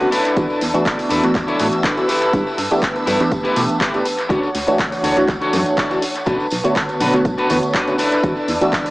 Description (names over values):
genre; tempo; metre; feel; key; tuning
filtered disco house; 122 BPM; 4/4; straight; unclear; A4 = 444 Hz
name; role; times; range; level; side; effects
funky polysynth comp; accompaniment; 0.0-8.9 s; D3 to C#5; -20 LUFS; equal; chorus, phaser, cassette tape, sidechain pumping, dub echo
dark studio violin section; sustained chords; 0.0-8.9 s; D4 to E6; -24 LUFS; right 1 dB; vintage 12-bit sampler grit, sidechain pumping
clean electric guitar; riff; 0.0-8.9 s; D4 to D5; -21 LUFS; left 1 dB; vintage 12-bit sampler grit, sidechain pumping, dub echo
punchy analog drum machine; drums; 0.0-8.9 s; handclaps, hi-hat; -24 LUFS; equal; dub echo
tambourine; percussion; 0.0-8.9 s; none; -34 LUFS; equal; sidechain pumping on perc, dub echo
plucky analog bass; bass; 0.4-8.6 s; B1 to B2; -24 LUFS; equal; tube saturation, sidechain pumping
electronic kick drum; drums; 0.4-8.8 s; none; -24 LUFS; equal; none
room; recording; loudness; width
moderate plate reverb, RT60 2.0 s; echo-heavy mix, small speaker sound; -15 LUFS; side -20 dB against mid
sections
0.0-8.9 A section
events
none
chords
0.1 E7sus4; 2.1 G69; 4.3 Dmaj7; 6.3 Bm7; 8.0 E7sus4